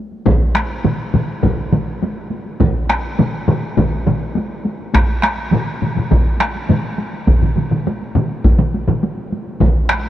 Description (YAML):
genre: japanese traditional, taiko drum ensemble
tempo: 103 BPM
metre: 4/4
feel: straight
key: none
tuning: none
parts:
  - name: taiko ensemble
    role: percussion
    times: 0.1-10.1 s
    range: none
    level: -22 LUFS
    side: equal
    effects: none
  - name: taiko ensemble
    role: percussion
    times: 0.3-10.0 s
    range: none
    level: -21 LUFS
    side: left 3 dB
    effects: none
  - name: taiko ensemble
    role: percussion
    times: 0.3-10.0 s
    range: none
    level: -21 LUFS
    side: right 3 dB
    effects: none
  - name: taiko ensemble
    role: percussion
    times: 0.3-9.7 s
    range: none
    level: -16 LUFS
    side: equal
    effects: none
room: moderate huge ambient reverb, RT60 7.3 s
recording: dark, warm production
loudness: -15 LUFS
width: side -12 dB against mid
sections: 0.3-10.1 A section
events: none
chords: none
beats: | 0.26 0.85 1.43 2.02 | 2.61 3.19 3.78 4.36 | 4.95 5.53 6.12 6.70 | 7.28 7.87 8.45 9.03 | 9.61